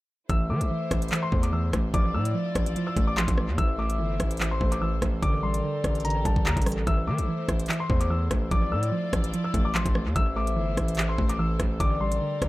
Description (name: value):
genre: hip hop, drill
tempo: 146 BPM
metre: 4/4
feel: half-time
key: A phrygian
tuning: A4 = 440 Hz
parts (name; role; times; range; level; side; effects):
- dark concert grand piano; melody; 0.3-12.5 s; A5 to E6; -33 LUFS; left 2 dB; tape echo
- hollow clarinet-like synth lead; second line; 0.3-12.5 s; C5 to E5; -36 LUFS; left 4 dB; chorus, tape echo
- soft round pluck; accompaniment; 0.3-12.5 s; D3 to A3; -31 LUFS; right 1 dB; chorus, tape echo
- warm studio string section; sustained chords; 0.3-12.5 s; A3 to D5; -38 LUFS; equal; none
- distorted 808-style bass; bass; 0.3-12.5 s; G1 to E3; -28 LUFS; equal; distortion
- drill drum kit; drums; 0.3-12.5 s; handclaps, hi-hat, kick drum, rim click; -27 LUFS; equal; none
room: little or no reverb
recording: echo-heavy mix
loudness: -23 LUFS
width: side -18 dB against mid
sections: 0.3-12.5 A section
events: none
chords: 0.3 Am; 1.9 Dmadd9/A; 3.6 Am; 5.2 Gm/A; 6.9 Am; 8.5 Dmadd9/A; 10.2 Am; 11.8 Gm/A